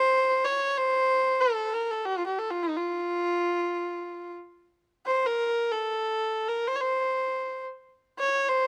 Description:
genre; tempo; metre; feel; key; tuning
Persian modal ensemble; free time; none; none; unclear; A4 = 440 Hz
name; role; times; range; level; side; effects
clear kamancheh; solo; 0.0-8.7 s; Eb4 to Db5; -27 LUFS; equal; none
room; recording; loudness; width
little or no reverb; recorded outdoors, with no room sound; -27 LUFS; mono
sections
0.0-4.7 A section; 4.7-8.7 A section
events
none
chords
none

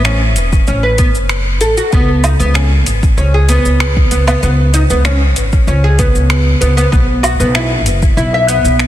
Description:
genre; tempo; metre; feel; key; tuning
organic downtempo; 96 BPM; 4/4; straight; C# minor; A4 = 440 Hz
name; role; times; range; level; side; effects
oud; arpeggios; 0.0-8.9 s; B3 to E5; -15 LUFS; equal; ping-pong delay
upright bass; bass; 0.0-8.9 s; E1 to C#2; -12 LUFS; equal; none
deep house drum kit; drums; 0.1-8.9 s; cabasa, finger snaps, hi-hat, woodblock; -20 LUFS; right 1 dB; overdrive, soft clipping on snare
electronic kick drum; drums; 0.5-8.1 s; none; -12 LUFS; equal; none
room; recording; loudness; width
light reverb, small room reverb; dense, heavily limited modern master; -9 LUFS; side -12 dB against mid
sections
0.0-8.9 A section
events
none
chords
0.0 A69; 1.9 C#5; 6.9 Bsus4

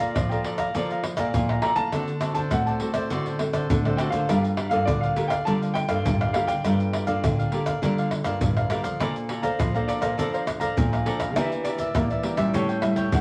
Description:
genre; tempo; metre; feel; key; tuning
samba and choro; 102 BPM; 4/4; straight; G minor, Bb major from 9.0 s; A4 = 440 Hz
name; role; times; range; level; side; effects
cavaquinho; accompaniment; 0.0-13.2 s; F#4 to Bb5; -32 LUFS; equal; none
nylon-string guitar; accompaniment; 0.0-13.2 s; A2 to D5; -31 LUFS; equal; none
nylon-string guitar; bass; 0.0-13.2 s; G2 to Bb3; -32 LUFS; equal; none
warm concert grand piano; melody; 0.1-13.2 s; A4 to Bb5; -31 LUFS; equal; none
egg shaker, surdo, pandeiro and tamborim; percussion; 0.2-13.2 s; none; -30 LUFS; equal; none
room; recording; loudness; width
wet studio reverb, RT60 0.6 s; vinyl crackle; -25 LUFS; mono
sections
0.0-9.0 A section; 9.0-13.2 B section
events
none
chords
0.0 Bbmaj7; 1.9 D7; 4.3 Gm9; 9.0 Bbmaj9; 11.4 Em7b5; 12.5 A7

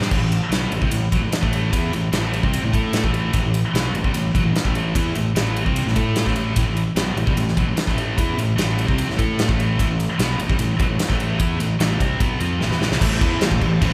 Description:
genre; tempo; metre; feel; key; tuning
hard rock; 149 BPM; 4/4; straight; A minor; A4 = 442 Hz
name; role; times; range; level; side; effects
scooped high-gain guitar; riff; 0.0-13.9 s; A2 to A4; -27 LUFS; equal; distortion
sludgy distorted guitar; riff; 0.0-13.9 s; A2 to A4; -27 LUFS; equal; overdrive
fuzz fingered electric bass; bass; 0.0-13.9 s; A1 to A2; -26 LUFS; equal; overdrive
gated 80s drum kit; drums; 0.0-13.9 s; crash cymbal, kick drum, ride cymbal, snare drum; -25 LUFS; equal; none
overdriven tonewheel organ; sustained chords; 13.0-13.9 s; E4 to A5; -33 LUFS; equal; slow rotary speaker, chorus vibrato
room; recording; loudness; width
wet large studio reverb, RT60 1.4 s; band playing live in one room; -20 LUFS; mono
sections
0.1-13.0 A section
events
drum fill 12.6-13.0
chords
0.1 Am

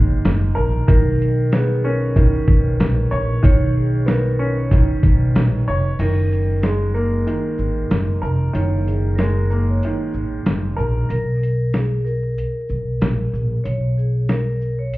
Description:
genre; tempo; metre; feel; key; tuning
hip hop, boom-bap hip-hop; 94 BPM; 4/4; swing 55% on 16ths; F# major; A4 = 440 Hz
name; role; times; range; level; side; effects
bright upright piano; accompaniment; 0.0-11.1 s; D#3 to C#5; -24 LUFS; right 2 dB; high-pass filter, low-pass filter
upright bass; bass; 0.0-14.9 s; E#1 to B1; -19 LUFS; equal; none
dusty soul sampler-style drum kit; drums; 0.2-15.0 s; crash cymbal, hi-hat, kick drum, shaker, snare drum; -17 LUFS; equal; none
vibraphone with medium mallets; melody; 0.9-15.0 s; G#4 to C#5; -27 LUFS; equal; high-pass filter, low-pass filter
room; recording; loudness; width
little or no reverb; heard muffled through a wall, club reverb, vinyl crackle, EQ; -16 LUFS; side -18 dB against mid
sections
0.0-6.0 A section; 6.0-15.0 B section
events
break 6.0-15.0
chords
0.0 F#69; 0.9 Bmaj9; 6.0 F#69; 11.1 G#madd9 (rootless)

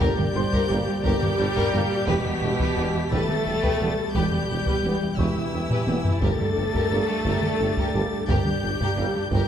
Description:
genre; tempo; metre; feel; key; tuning
cinematic, hybrid orchestral and electronic film score; 58 BPM (dotted quarters); 6/8; straight; unclear; A4 = 441 Hz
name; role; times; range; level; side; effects
rich chamber violin section; melody; 0.0-9.5 s; E6 to B6; -33 LUFS; left 6 dB; none
warm symphonic violin section; second line; 0.0-9.5 s; D4 to B4; -31 LUFS; left 3 dB; none
warm symphonic viola section; accompaniment; 0.0-9.5 s; E4 to A4; -29 LUFS; right 1 dB; none
warm French horn section; sustained chords; 0.0-9.5 s; B2 to A3; -30 LUFS; left 2 dB; none
warm analog pad; sustained chords; 0.0-9.5 s; Bb2 to D5; -32 LUFS; right 1 dB; chorus
mellow tuba; bass; 0.0-9.4 s; E1 to G1; -32 LUFS; right 3 dB; none
warm studio cello section; bass; 0.0-9.4 s; E2 to G2; -29 LUFS; right 2 dB; none
warm symphonic double bass section; bass; 0.0-9.4 s; E1 to G1; -31 LUFS; right 2 dB; none
taiko ensemble; drums; 0.0-9.5 s; none; -28 LUFS; left 1 dB; none
felt-muted upright piano; texture; 0.0-9.5 s; A4 to E6; -40 LUFS; left 2 dB; none
mellow trombone section; sustained chords; 0.7-9.1 s; G3 to B3; -37 LUFS; right 2 dB; none
room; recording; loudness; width
wet concert hall reverb, RT60 2.3 s; dark, warm production; -21 LUFS; side -9 dB against mid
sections
0.0-9.5 A section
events
drum fill 5.7-6.2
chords
0.0 Gm; 2.1 Em; 6.2 Gm

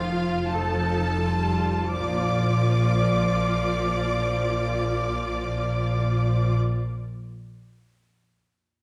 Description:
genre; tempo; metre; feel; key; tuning
classical, slow romantic movement for symphony orchestra; 40-50 BPM; 3/4; rubato; Bb major; A4 = 440 Hz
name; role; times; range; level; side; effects
clear studio violin section; melody; 0.0-6.6 s; F5 to D6; -33 LUFS; equal; none
rich chamber violin section; second line; 0.0-6.6 s; F4 to D5; -34 LUFS; equal; none
rich chamber viola section; accompaniment; 0.0-6.5 s; F3 to F4; -32 LUFS; equal; none
concert harp; arpeggios; 0.0-6.9 s; F2 to F5; -41 LUFS; equal; none
rich studio double bass section; bass; 0.0-6.5 s; F1 to Bb1; -29 LUFS; equal; none
warm symphonic cello section; bass; 0.0-6.5 s; Bb2 to A4; -31 LUFS; equal; none
room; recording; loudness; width
wet recital hall reverb, RT60 1.3 s; heard from further back in the room; -24 LUFS; mono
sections
0.0-1.9 A section; 1.9-6.0 B section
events
slowing down 0.0-1.9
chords
0.0 F5; 0.5 F9; 1.9 Bb

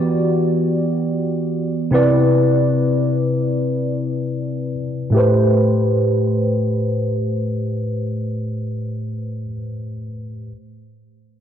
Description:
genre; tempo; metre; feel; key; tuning
R&B; free time; none; none; A dorian; A4 = 438 Hz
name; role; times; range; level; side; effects
tine electric piano; accompaniment; 0.0-10.5 s; A2 to D5; -17 LUFS; equal; analog chorus, low-pass filter
room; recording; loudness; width
moderate lush hall reverb, RT60 2.6 s; dreamy mix soaked in reverb; -17 LUFS; side -9 dB against mid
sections
0.0-5.1 A section; 5.1-8.0 B section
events
filter sweep on tine electric piano 0.0-5.1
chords
0.0 Em7; 1.9 Cmaj7; 5.1 Am7

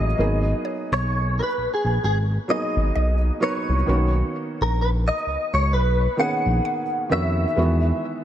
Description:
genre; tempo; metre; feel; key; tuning
R&B; 65 BPM; 4/4; swing 58% on 16ths; unclear; A4 = 441 Hz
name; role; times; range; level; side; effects
direct-recorded clean electric guitar; melody; 0.0-8.2 s; G#4 to F#5; -24 LUFS; equal; ensemble chorus, tape echo
felt-muted upright piano; accompaniment; 0.0-8.2 s; D#3 to B4; -27 LUFS; right 2 dB; none
smooth synth bass; bass; 0.0-7.9 s; G#1 to E#2; -21 LUFS; equal; none
mallet-like synth pluck; texture; 0.6-8.0 s; C#5 to F#5; -36 LUFS; equal; none
room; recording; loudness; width
light reverb, digital ambience; none; -20 LUFS; side -11 dB against mid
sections
0.2-8.2 A section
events
none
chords
0.2 G#m7; 3.9 Bmaj9; 7.6 Emaj9

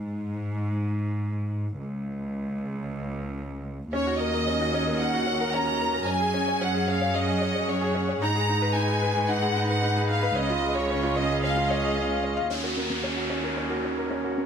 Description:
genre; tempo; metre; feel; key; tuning
piano and strings electronica; 112 BPM; 4/4; straight; Eb minor; A4 = 440 Hz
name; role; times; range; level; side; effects
warm studio cello section; bass; 0.0-14.5 s; Db2 to Ab2; -29 LUFS; equal; none
clear studio violin section; melody; 3.9-12.2 s; Db5 to Bb5; -27 LUFS; left 1 dB; none
rich string quartet; sustained chords; 3.9-14.5 s; Db3 to Gb5; -34 LUFS; right 1 dB; none
felt-muted upright piano; riff; 3.9-14.5 s; Db4 to F5; -28 LUFS; right 1 dB; low-pass filter
warbly dusty pluck; arpeggios; 12.5-14.5 s; Db4 to Db5; -36 LUFS; left 1 dB; chorus, digital delay
downlifter; sound effects; 12.5-14.5 s; none; -31 LUFS; left 1 dB; none
room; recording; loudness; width
moderate recital hall reverb, RT60 1.5 s; none; -24 LUFS; side -7 dB against mid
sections
0.0-12.5 A section; 12.5-14.5 B section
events
filter sweep on synth arpeggio sound 12.5-14.5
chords
0.0 N.C.; 3.9 Ebm7; 6.1 Gbsus2; 8.2 Abm7; 10.4 Dbadd9; 12.5 Ebm7

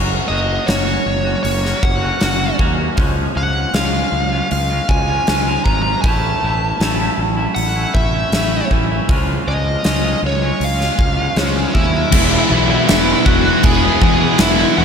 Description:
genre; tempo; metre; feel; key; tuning
quiet-loud alternative rock; 79 BPM; 4/4; straight; unclear; A4 = 440 Hz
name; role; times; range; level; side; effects
twangy electric guitar; arpeggios; 0.0-12.1 s; A2 to F#4; -23 LUFS; equal; slapback echo
fuzz fingered electric bass; bass; 0.0-14.8 s; E1 to E2; -20 LUFS; equal; overdrive
bluesy overdriven lead guitar; melody; 0.3-14.8 s; C#4 to A#5; -20 LUFS; equal; distortion, slapback echo
huge arena drum kit; drums; 0.7-14.6 s; crash cymbal, hi-hat, kick drum, snare drum; -18 LUFS; equal; none
thick fuzz guitar; riff; 12.1-14.8 s; E3 to E4; -19 LUFS; left 11 dB; distortion
thick fuzz guitar; riff; 12.1-14.8 s; E2 to E3; -18 LUFS; equal; distortion
tight distorted guitar; riff; 12.1-14.8 s; E3 to E4; -20 LUFS; right 10 dB; distortion, slapback echo
room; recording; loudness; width
moderate lush hall reverb, RT60 2.5 s; big arena sound; -13 LUFS; side -7 dB against mid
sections
0.0-12.1 A section; 12.1-14.8 B section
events
none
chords
0.0 F#; 3.0 C#; 6.0 A; 9.1 C#; 12.1 E

